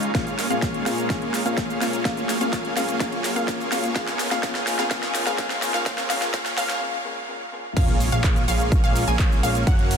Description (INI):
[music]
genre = EDM, festival progressive house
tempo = 126 BPM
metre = 4/4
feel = straight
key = unclear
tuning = A4 = 440 Hz
[part]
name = rich chamber string section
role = sustained chords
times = 0.0-10.0 s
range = Db3 to Ab4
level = -32 LUFS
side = equal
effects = sidechain pumping, low-pass filter
[part]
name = wide unison pluck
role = arpeggios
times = 0.0-10.0 s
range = F5 to Ab5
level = -29 LUFS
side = equal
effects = sidechain pumping, ping-pong delay
[part]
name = dense compressed supersaw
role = riff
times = 0.0-10.0 s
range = Ab3 to Ab5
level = -28 LUFS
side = right 1 dB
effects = sidechain pumping, ping-pong delay
[part]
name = fat analog bass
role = bass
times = 0.0-10.0 s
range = Gb1 to Gb2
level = -30 LUFS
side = equal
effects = none
[part]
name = big-room dance drum kit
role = drums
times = 0.0-10.0 s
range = crash cymbal, handclaps, hi-hat, shaker, snare drum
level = -28 LUFS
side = equal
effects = overdrive, high-pass filter on snare, high-pass filter on hats, high-pass filter on perc, high-pass filter on cymbals
[part]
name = riser and impact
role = sound effects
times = 0.2-9.7 s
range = none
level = -34 LUFS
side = equal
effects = none
[part]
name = felt-muted upright piano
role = accompaniment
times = 0.1-7.6 s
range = Bb2 to F4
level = -31 LUFS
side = left 6 dB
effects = vintage 12-bit sampler grit, sidechain pumping, ping-pong delay
[part]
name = electronic kick drum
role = drums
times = 0.1-9.8 s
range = none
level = -22 LUFS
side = equal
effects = overdrive
[sound]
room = light reverb, digital ambience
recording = dense, heavily limited modern master, high-pass filter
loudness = -20 LUFS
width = side -7 dB against mid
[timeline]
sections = 0.0-7.8 A section; 7.8-10.0 B section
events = build-up 0.0-7.8; drum fill 0.0-6.8; filter sweep on synth pluck 0.0-7.8; filter sweep 0.0-7.8; riser 0.2-6.8; break 6.8-7.8; drop 7.8-10.0; impact 7.8-9.7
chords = 0.1 Bbm7; 2.1 Gb; 4.0 Dbadd9; 7.8 Bbm7